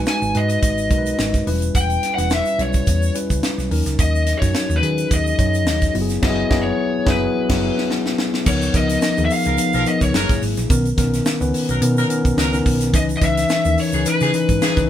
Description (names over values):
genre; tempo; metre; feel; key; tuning
polished 1980s jazz-funk pop; 107 BPM; 4/4; swing 54% on 16ths; unclear; A4 = 441 Hz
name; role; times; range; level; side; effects
mellow tine electric piano; accompaniment; 0.0-14.9 s; D#3 to C#5; -21 LUFS; left 2 dB; none
hollow-body short-scale fingered electric bass; bass; 0.0-14.9 s; E1 to D#3; -22 LUFS; equal; none
lead guitar through a small cranked amp; melody; 0.1-14.9 s; B4 to G#5; -22 LUFS; left 1 dB; overdrive
tight funk drum kit; drums; 0.1-14.9 s; crash cymbal, hi-hat, kick drum, snare drum; -21 LUFS; right 1 dB; none
tube shaker; percussion; 0.1-14.9 s; none; -34 LUFS; right 6 dB; none
warm horn section; second line; 9.4-14.8 s; E3 to A#4; -25 LUFS; left 1 dB; none
room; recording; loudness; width
light reverb; band playing live in one room; -16 LUFS; side -11 dB against mid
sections
0.0-8.5 A section; 8.5-14.9 B section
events
band accent 6.2-8.5; drum fill 7.3-8.5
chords
0.0 G#m7; 1.5 Em6; 3.7 D#m7; 5.9 F#9sus4; 8.5 C#13; 10.1 F#9; 10.7 Bmaj9; 12.9 C#m9